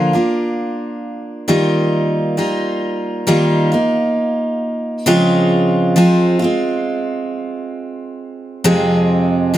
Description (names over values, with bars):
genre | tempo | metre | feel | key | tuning
pop | 67 BPM | 4/4 | straight | unclear | A4 = 443 Hz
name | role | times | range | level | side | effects
picked steel-string acoustic guitar | solo | 0.0-9.6 s | F2 to Ab4 | -14 LUFS | equal | none
room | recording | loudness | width
light reverb | none | -14 LUFS | side -13 dB against mid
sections
0.0-5.1 A section; 5.1-9.6 B section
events
none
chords
0.0 Bb/D; 1.5 Ebadd9; 5.1 Dbmaj7; 8.6 Fm